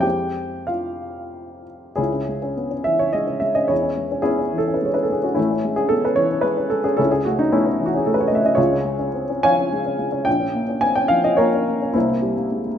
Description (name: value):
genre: classical, romantic character piece for solo piano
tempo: 90-118 BPM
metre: 3/4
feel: rubato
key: C# minor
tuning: A4 = 438 Hz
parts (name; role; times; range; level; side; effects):
- warm upright piano; solo; 0.0-12.8 s; A1 to Ab5; -18 LUFS; equal; none
room: wet recital hall reverb, RT60 1.6 s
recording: none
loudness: -18 LUFS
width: side -9 dB against mid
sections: 0.0-2.0 A section; 2.0-12.8 B section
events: none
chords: 0.0 Fm; 2.0 C#m; 3.7 C#m/E; 5.4 Amaj7; 7.0 A/C#; 8.6 Db; 10.3 Bbm; 11.9 C7